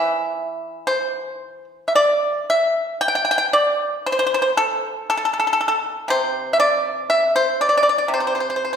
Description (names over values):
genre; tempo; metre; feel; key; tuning
chinese traditional, Chinese solo plucked strings; 58 BPM; 2/4; uneven beats, rubato; C gong mode; A4 = 440 Hz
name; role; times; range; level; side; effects
pipa; solo; 0.0-8.8 s; C3 to G5; -17 LUFS; equal; none
room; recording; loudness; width
wet recital hall reverb, RT60 1.5 s; recorded in a church or concert hall; -17 LUFS; side -7 dB against mid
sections
0.0-8.8 A section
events
none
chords
none